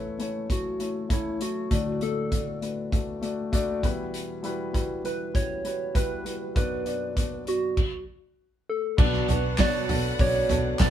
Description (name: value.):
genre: piano-driven pop.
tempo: 99 BPM.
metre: 4/4.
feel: straight.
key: B minor.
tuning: A4 = 440 Hz.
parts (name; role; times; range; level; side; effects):
soft struck synth lead; melody; 0.0-10.9 s; E4 to D5; -30 LUFS; right 2 dB; chorus.
dark upright piano; accompaniment; 0.0-10.9 s; A1 to D5; -30 LUFS; left 3 dB; none.
loose indie drum kit; drums; 0.2-10.9 s; crash cymbal, handclaps, hi-hat, kick drum, snare drum, toms; -26 LUFS; equal; none.
warm studio string section; sustained chords; 9.0-10.9 s; B4 to F#5; -38 LUFS; left 1 dB; none.
fingerpicked steel-string acoustic guitar; riff; 9.0-10.9 s; B2 to F#4; -31 LUFS; right 5 dB; none.
plucky analog bass; bass; 9.0-10.9 s; B1; -29 LUFS; right 1 dB; none.
room: light reverb.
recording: band playing live in one room.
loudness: -25 LUFS.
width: side -10 dB against mid.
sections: 0.0-9.0 A section; 9.0-10.9 B section.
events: stop 7.8-9.0.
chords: 0.0 A; 1.7 D; 3.8 Emadd9; 6.6 Bm.